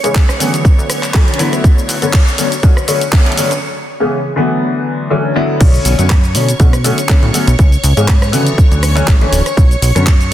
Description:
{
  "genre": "filtered disco house",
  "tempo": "121 BPM",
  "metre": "4/4",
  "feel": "swing 55% on 16ths",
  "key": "B dorian",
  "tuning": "A4 = 440 Hz",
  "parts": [
    { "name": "warm baby grand piano", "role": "accompaniment", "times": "0.0-10.3 s", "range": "C#3 to E4", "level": "-16 LUFS", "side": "left 2 dB", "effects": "phaser, vintage 12-bit sampler grit, sidechain pumping, low-pass filter" },
    { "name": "string machine, full ensemble", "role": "sustained chords", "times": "0.0-10.3 s", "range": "C#5 to C#6", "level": "-23 LUFS", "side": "right 1 dB", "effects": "phaser, ensemble chorus, sidechain pumping, low-pass filter" },
    { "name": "plucky analog bass", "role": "bass", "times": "0.0-10.3 s", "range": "D1 to C#3", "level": "-15 LUFS", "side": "equal", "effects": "sidechain pumping, high-pass filter, low-pass filter" },
    { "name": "house drum kit", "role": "drums", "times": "0.0-10.3 s", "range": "cabasa, crash cymbal, handclaps, hi-hat, rim click", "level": "-19 LUFS", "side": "equal", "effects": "sidechain pumping on hats, sidechain pumping on perc, sidechain pumping on cymbals" },
    { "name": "electronic kick drum", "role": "drums", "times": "0.2-10.2 s", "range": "none", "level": "-9 LUFS", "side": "equal", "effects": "none" }
  ],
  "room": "light reverb, digital ambience",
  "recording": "dense, heavily limited modern master",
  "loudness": "-10 LUFS",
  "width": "side -12 dB against mid",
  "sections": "0.0-5.6 A section; 5.6-10.3 B section",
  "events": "build-up 0.0-5.6; filter sweep 0.0-5.6; break 3.6-5.6; drop 5.6-10.3",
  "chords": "0.0 C#m7; 0.6 Dmaj7; 1.6 Bm7; 3.6 C#m7; 4.6 Dmaj7; 5.6 Bm7; 7.6 C#m7; 8.6 Dmaj7; 9.6 Bm7"
}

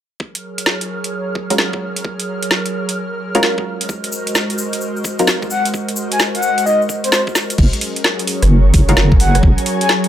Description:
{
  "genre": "UK garage, two-step garage",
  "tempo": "130 BPM",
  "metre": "4/4",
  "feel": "swing 65% on 16ths",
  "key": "Gb lydian",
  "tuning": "A4 = 441 Hz",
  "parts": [
    { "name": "airy breathy pad", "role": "sustained chords", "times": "0.2-10.1 s", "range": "Gb3 to F6", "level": "-23 LUFS", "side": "right 1 dB", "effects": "chorus, sidechain pumping" },
    { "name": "electronic kick drum", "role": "drums", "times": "0.2-9.6 s", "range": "none", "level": "-16 LUFS", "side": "equal", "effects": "overdrive, high-pass filter on kick, small room ambience" },
    { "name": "garage drum kit", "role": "drums", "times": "0.4-10.1 s", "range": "crash cymbal, hi-hat, rim click, snare drum", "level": "-18 LUFS", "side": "equal", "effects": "overdrive, small room ambience" },
    { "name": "punchy chord stab", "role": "stabs", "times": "1.5-5.3, 8.9-9.0 s", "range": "Gb3 to Bb4", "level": "-19 LUFS", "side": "equal", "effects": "chorus, dub echo" },
    { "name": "cabasa", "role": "percussion", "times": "3.9-7.6 s", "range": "none", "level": "-27 LUFS", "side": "left 4 dB", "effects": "none" },
    { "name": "breathy flute-like synth lead", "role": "melody", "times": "5.5-9.9 s", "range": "C5 to Ab5", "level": "-18 LUFS", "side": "left 2 dB", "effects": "wide subtle chorus, dub echo" },
    { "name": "deep soft wobble bass", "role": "bass", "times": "7.6-9.6 s", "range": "Gb1", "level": "-12 LUFS", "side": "equal", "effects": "chorus" },
    { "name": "ethereal airy pad", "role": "texture", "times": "7.8-10.1 s", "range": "Gb3 to Bb5", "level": "-21 LUFS", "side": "equal", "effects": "ensemble chorus, built-in reverb, sidechain pumping" }
  ],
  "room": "light reverb",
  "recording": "none",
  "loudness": "-14 LUFS",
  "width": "side -11 dB against mid",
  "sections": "0.2-7.6 A section; 7.6-10.1 B section",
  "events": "drum fill 7.4",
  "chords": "0.2 Gbmaj9; 3.7 Ab13; 7.6 Gbadd9"
}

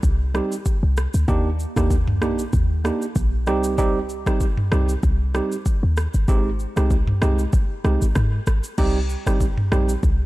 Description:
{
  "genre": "afrobeats",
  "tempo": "96 BPM",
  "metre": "4/4",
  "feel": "swing 55% on 16ths",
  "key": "C minor",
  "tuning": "A4 = 440 Hz",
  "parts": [
    { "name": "short 808-style bass", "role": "bass", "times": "0.0-10.3 s", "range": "G1 to Ab2", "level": "-21 LUFS", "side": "equal", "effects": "none" },
    { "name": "afro-pop drum kit", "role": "drums", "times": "0.0-10.2 s", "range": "crash cymbal, kick drum, rim click, shaker, toms", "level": "-23 LUFS", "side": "equal", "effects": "overdrive" },
    { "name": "tine electric piano", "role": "accompaniment", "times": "0.3-9.9 s", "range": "G3 to G4", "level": "-25 LUFS", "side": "right 3 dB", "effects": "none" }
  ],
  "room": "little or no reverb",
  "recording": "dark, warm production",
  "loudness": "-18 LUFS",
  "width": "side -18 dB against mid",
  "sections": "0.0-8.8 A section; 8.8-10.3 B section",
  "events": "none",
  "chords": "0.0 Cm; 1.3 Ebmaj7; 3.5 Cm; 6.3 Abmaj7; 8.8 Cm"
}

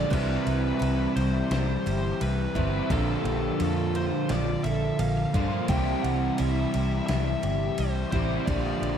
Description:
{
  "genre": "rock, shoegaze and dream pop",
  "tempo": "86 BPM",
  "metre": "4/4",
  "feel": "straight",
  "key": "unclear",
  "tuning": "A4 = 440 Hz",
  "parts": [
    { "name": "fuzz lead guitar", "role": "melody", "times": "0.0-9.0 s", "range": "A4 to G5", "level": "-34 LUFS", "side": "left 1 dB", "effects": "distortion, tape echo" },
    { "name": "picked twelve-string acoustic guitar", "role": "arpeggios", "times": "0.0-9.0 s", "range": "C4 to D5", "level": "-37 LUFS", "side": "right 5 dB", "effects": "analog chorus, tape echo" },
    { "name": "overdriven electric guitar", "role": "riff", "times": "0.0-9.0 s", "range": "Bb2 to F4", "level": "-30 LUFS", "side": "left 9 dB", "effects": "ensemble chorus" },
    { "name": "overdriven semi-hollow guitar", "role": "riff", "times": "0.0-9.0 s", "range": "Bb2 to F4", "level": "-30 LUFS", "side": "right 8 dB", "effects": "reverse reverb" },
    { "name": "vintage muted fingered electric bass", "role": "bass", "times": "0.0-9.0 s", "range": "G1 to G2", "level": "-29 LUFS", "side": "equal", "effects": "none" },
    { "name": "gated 80s digital drum machine", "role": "drums", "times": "0.1-9.0 s", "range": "crash cymbal, kick drum, ride cymbal, snare drum", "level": "-34 LUFS", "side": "equal", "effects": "gated reverb, gated reverb snare, overdrive" }
  ],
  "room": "moderate lush hall reverb, RT60 2.1 s",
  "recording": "dreamy mix soaked in reverb",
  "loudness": "-24 LUFS",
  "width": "side -8 dB against mid",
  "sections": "0.1-9.0 A section",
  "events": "none",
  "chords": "0.1 Cmaj7; 2.9 Bbmaj7; 5.7 C"
}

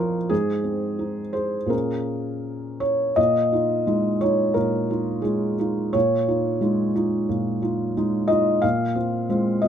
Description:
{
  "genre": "neoclassical minimalist piano",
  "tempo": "81-91 BPM",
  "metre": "4/4",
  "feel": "rubato",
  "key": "unclear",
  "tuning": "A4 = 440 Hz",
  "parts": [
    { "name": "felt-muted upright piano", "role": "solo", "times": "0.0-9.7 s", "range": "Ab2 to F5", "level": "-20 LUFS", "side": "equal", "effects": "none" }
  ],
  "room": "moderate small room reverb, RT60 0.6 s",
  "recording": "minimal, uncompressed stereo recording",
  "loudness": "-20 LUFS",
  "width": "side -8 dB against mid",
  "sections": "0.0-3.2 A section; 3.2-9.7 B section",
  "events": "none",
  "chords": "0.3 Ab; 1.7 Bbm7; 3.2 Dbadd9/Bb; 8.6 Fm/Bb"
}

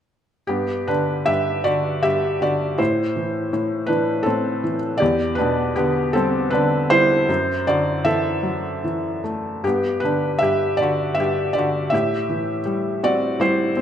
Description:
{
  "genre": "classical, lyrical solo piano",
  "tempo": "74-83 BPM",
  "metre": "3/4",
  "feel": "rubato",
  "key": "G major",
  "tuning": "A4 = 440 Hz",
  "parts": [
    { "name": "felt-muted upright piano", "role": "solo", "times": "0.5-13.8 s", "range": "E2 to E5", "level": "-18 LUFS", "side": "equal", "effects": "none" }
  ],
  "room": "moderate recital hall reverb, RT60 1.4 s",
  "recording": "none",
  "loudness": "-18 LUFS",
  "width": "side -9 dB against mid",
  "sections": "0.5-13.8 A section",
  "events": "none",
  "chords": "0.5 G; 2.8 Am; 5.0 Em7; 7.3 Dadd9/F#; 9.6 G; 11.9 Am7"
}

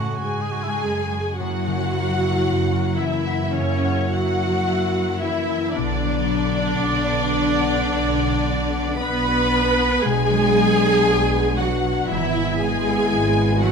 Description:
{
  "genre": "classical, slow romantic movement for symphony orchestra",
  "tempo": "49-60 BPM",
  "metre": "4/4",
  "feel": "rubato",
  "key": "unclear",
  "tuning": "A4 = 439 Hz",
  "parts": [
    { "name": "rich studio violin section", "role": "melody", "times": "0.0-13.7 s", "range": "C#5 to B5", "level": "-29 LUFS", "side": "left 5 dB", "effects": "none" },
    { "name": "rich studio violin section", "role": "second line", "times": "0.0-13.7 s", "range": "C#4 to B5", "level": "-29 LUFS", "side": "left 2 dB", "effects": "none" },
    { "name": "warm cor anglais", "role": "second line", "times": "0.0-0.8 s", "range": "E4 to G#4", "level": "-32 LUFS", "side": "right 5 dB", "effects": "none" },
    { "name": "rich studio viola section", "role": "accompaniment", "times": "0.0-13.7 s", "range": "A3 to B4", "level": "-23 LUFS", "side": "right 2 dB", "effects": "none" },
    { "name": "concert harp", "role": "arpeggios", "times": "0.0-13.7 s", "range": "F#2 to F#5", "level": "-27 LUFS", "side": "left 8 dB", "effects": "none" },
    { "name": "clear studio cello section", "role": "bass", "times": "0.0-13.7 s", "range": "F#2 to B3", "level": "-27 LUFS", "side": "right 3 dB", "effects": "none" },
    { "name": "dark French horn section", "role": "sustained chords", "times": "1.4-13.7 s", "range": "A#3 to E4", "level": "-28 LUFS", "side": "left 7 dB", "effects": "none" },
    { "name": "rich studio double bass section", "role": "bass", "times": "1.4-13.7 s", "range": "G#1 to F#2", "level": "-25 LUFS", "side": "right 4 dB", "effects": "none" }
  ],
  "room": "moderate scoring stage reverb, RT60 1.5 s",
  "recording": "close, detailed microphones",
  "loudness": "-18 LUFS",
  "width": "side -5 dB against mid",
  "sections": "0.0-1.4 A section; 1.4-13.7 B section",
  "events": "none",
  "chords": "0.0 F#m; 1.4 F#7; 5.8 Bm; 12.1 E/G#"
}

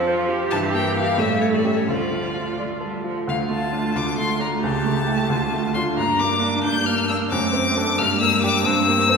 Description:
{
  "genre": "quick classical-period movement for piano quartet",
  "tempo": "90 BPM (dotted quarters)",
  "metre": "6/8",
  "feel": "rubato",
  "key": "D minor",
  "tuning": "A4 = 440 Hz",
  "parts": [
    { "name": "rich violin", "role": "melody", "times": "0.0-9.2 s", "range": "A4 to G6", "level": "-22 LUFS", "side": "left 5 dB", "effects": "none" },
    { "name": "clear cello", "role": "second line", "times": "0.0-9.2 s", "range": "E3 to Bb3", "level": "-26 LUFS", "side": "right 4 dB", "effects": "none" },
    { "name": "clear grand piano", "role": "accompaniment", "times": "0.0-9.2 s", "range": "C#2 to F5", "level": "-23 LUFS", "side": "equal", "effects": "none" },
    { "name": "warm viola", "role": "accompaniment", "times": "0.0-9.2 s", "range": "Bb3 to A4", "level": "-28 LUFS", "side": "right 1 dB", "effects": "none" }
  ],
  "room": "wet concert hall reverb, RT60 2.1 s",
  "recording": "recorded in a church or concert hall",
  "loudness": "-19 LUFS",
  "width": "side -5 dB against mid",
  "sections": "0.0-3.3 A section; 3.3-9.2 B section",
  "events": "none",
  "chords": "0.0 F; 0.5 Edim/G; 1.2 A7; 1.9 Dm; 4.6 A7/C#; 5.3 Dm; 6.0 Gm; 7.3 D7/F#; 8.0 Gm; 8.6 C7/G"
}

